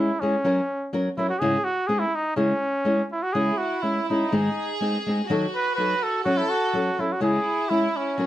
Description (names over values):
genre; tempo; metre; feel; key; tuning
mexican folk, mariachi; 124 BPM; 2/4; swing 54% on 8ths; C# minor; A4 = 440 Hz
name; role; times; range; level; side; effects
clear trumpet; melody; 0.0-8.3 s; C#4 to B4; -25 LUFS; right 1 dB; none
nylon-string guitar; accompaniment; 0.0-8.3 s; G#2 to A#4; -24 LUFS; left 1 dB; none
warm studio violin section; second line; 3.3-8.3 s; E4 to A4; -29 LUFS; right 1 dB; none
room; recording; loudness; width
moderate studio reverb, RT60 0.6 s; none; -21 LUFS; side -13 dB against mid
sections
0.0-3.3 A section; 3.3-8.3 A section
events
none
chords
0.4 F#; 1.4 C#m/G#; 1.9 G#; 2.4 C#m; 4.3 G#; 5.3 D#dim; 6.3 F#m; 7.2 C#m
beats
| 0.43 0.92 | 1.40 1.88 | 2.36 2.85 | 3.34 3.83 | 4.32 4.80 | 5.29 5.77 | 6.25 6.74 | 7.22 7.71 | 8.19